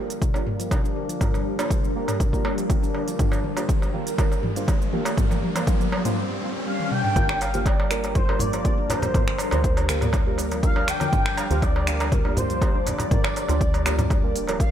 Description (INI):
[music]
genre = afro house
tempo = 121 BPM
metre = 4/4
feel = straight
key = G minor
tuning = A4 = 439 Hz
[part]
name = ethereal airy pad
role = sustained chords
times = 0.0-14.7 s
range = G3 to D5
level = -32 LUFS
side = left 2 dB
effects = ensemble chorus, built-in reverb, sidechain pumping
[part]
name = deep mellow chord stab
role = stabs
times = 0.0-14.6 s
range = Bb3 to C5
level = -32 LUFS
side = right 3 dB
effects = chorus, phaser, sidechain pumping, diffuse ambient delay
[part]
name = riser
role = sound effects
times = 0.0-7.2 s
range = none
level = -35 LUFS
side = equal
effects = none
[part]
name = deep house drum kit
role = drums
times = 0.1-14.7 s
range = finger snaps, hi-hat, shaker, toms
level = -29 LUFS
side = equal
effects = none
[part]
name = handpan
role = arpeggios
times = 0.2-14.6 s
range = D3 to D4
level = -33 LUFS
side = left 2 dB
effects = sidechain pumping, diffuse ambient delay
[part]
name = electronic kick drum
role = drums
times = 0.2-14.7 s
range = none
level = -23 LUFS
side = equal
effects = none
[part]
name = darbuka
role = percussion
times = 0.3-14.6 s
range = none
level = -32 LUFS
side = right 2 dB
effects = none
[part]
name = expressive portamento lead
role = melody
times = 6.7-14.7 s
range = Bb4 to G5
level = -28 LUFS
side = equal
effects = ensemble chorus, diffuse ambient delay
[part]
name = woody FM bass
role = bass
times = 7.2-14.7 s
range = D1 to D2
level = -28 LUFS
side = equal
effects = sidechain pumping
[part]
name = congas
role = percussion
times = 7.2-14.1 s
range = none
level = -30 LUFS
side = left 1 dB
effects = none
[sound]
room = light reverb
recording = none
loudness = -20 LUFS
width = side -10 dB against mid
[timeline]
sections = 0.0-7.2 A section; 7.2-14.7 B section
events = build-up 0.0-7.2; drum fill 0.0-6.2, 6.8-7.2; riser 0.0-7.2; filter sweep on ambient pad 0.0-7.2; break 6.2-7.2; drop 7.2-14.7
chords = 0.0 Gm7